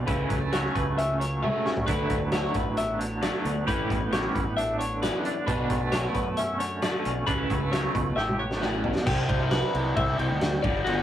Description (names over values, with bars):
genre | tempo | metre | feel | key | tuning
math rock and midwest emo | 133 BPM | 4/4 | straight | unclear | A4 = 438 Hz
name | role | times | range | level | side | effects
twangy electric guitar | accompaniment | 0.0-9.1 s | D2 to G4 | -31 LUFS | right 2 dB | tremolo
twelve-string electric guitar | arpeggios | 0.0-11.0 s | F#4 to G5 | -31 LUFS | left 2 dB | none
growling fingered electric bass | bass | 0.0-11.0 s | G1 to F#2 | -30 LUFS | equal | overdrive
raw garage guitar | riff | 0.1-11.0 s | G2 to E4 | -31 LUFS | left 2 dB | overdrive, phaser
loose indie drum kit | drums | 0.1-11.0 s | crash cymbal, hi-hat, kick drum, snare drum, toms | -29 LUFS | equal | none
room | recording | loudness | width
moderate booth ambience, RT60 0.2 s | rough rehearsal-room recording, tube saturation | -24 LUFS | side -11 dB against mid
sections
0.0-9.1 A section; 9.1-11.0 B section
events
drum fill 1.4-1.9, 8.2-9.1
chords
0.1 F#m7/C#; 1.9 D69; 3.7 A9sus4; 5.5 Bm9; 7.3 F#m7/C#; 8.2 A9sus4; 9.1 Cmaj7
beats
| 0.07 0.52 0.97 1.42 | 1.87 2.32 2.77 3.22 | 3.67 4.12 4.57 5.02 | 5.47 5.92 6.37 6.82 | 7.27 7.72 8.17 8.62 | 9.07 9.52 9.96 10.41 | 10.86